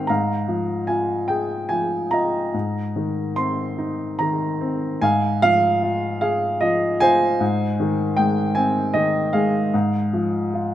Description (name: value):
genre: classical, lyrical solo piano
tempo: 71-80 BPM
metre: 3/4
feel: rubato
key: unclear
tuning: A4 = 440 Hz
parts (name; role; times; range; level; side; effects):
- warm baby grand piano; solo; 0.0-10.7 s; Ab2 to C6; -19 LUFS; equal; none
room: light reverb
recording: close, detailed microphones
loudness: -19 LUFS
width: side -12 dB against mid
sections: 0.0-10.7 A section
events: grand piano fill 10.5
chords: 0.1 Fm11/Ab; 2.5 Abadd9; 5.0 Ab6; 7.4 Ab; 9.7 Db/Ab (rootless)